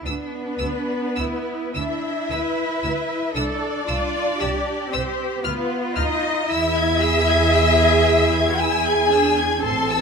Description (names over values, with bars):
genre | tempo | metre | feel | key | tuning
classical, slow romantic movement for string orchestra | 57 BPM | 3/4 | rubato | unclear | A4 = 439 Hz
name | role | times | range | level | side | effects
warm symphonic violin section | second line | 0.0-10.0 s | B4 to A5 | -22 LUFS | left 4 dB | none
rich symphonic viola section | accompaniment | 0.0-10.0 s | B3 to A4 | -25 LUFS | right 1 dB | none
clear symphonic double bass section | bass | 0.0-10.0 s | A1 to E2 | -25 LUFS | right 3 dB | none
rich studio cello section | bass | 0.0-10.0 s | C4 to B4 | -26 LUFS | right 4 dB | none
rich symphonic violin section | melody | 0.1-10.0 s | C6 to G#6 | -27 LUFS | left 3 dB | none
room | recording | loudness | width
moderate scoring stage reverb, RT60 2.1 s | none | -18 LUFS | side -5 dB against mid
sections
0.0-10.0 A section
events
none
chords
0.1 E5/D; 3.4 Am/C; 5.5 B(b5, no3); 6.5 E